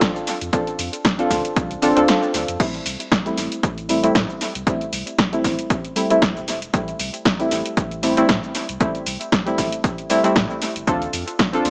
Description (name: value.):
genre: deep house.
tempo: 116 BPM.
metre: 4/4.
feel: swing 55% on 16ths.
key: A minor.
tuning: A4 = 440 Hz.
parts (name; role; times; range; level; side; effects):
deep mellow chord stab; stabs; 0.0-11.7 s; G3 to A4; -23 LUFS; equal; chorus, sidechain pumping, analog delay.
warm sub bass; bass; 0.0-11.7 s; D1 to A2; -36 LUFS; equal; sidechain pumping.
electronic kick drum; drums; 0.0-11.5 s; none; -25 LUFS; equal; none.
punchy analog drum machine; drums; 0.0-11.7 s; cabasa, crash cymbal, hi-hat, snare drum; -25 LUFS; equal; tape echo.
room: moderate plate reverb, RT60 1.3 s, digital ambience.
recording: echo-heavy mix, small speaker sound.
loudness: -21 LUFS.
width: mono.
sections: 0.0-11.7 A section.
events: kick drops out 2.1-2.6.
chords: 0.0 Dm7; 2.6 Am7; 10.9 Dm7.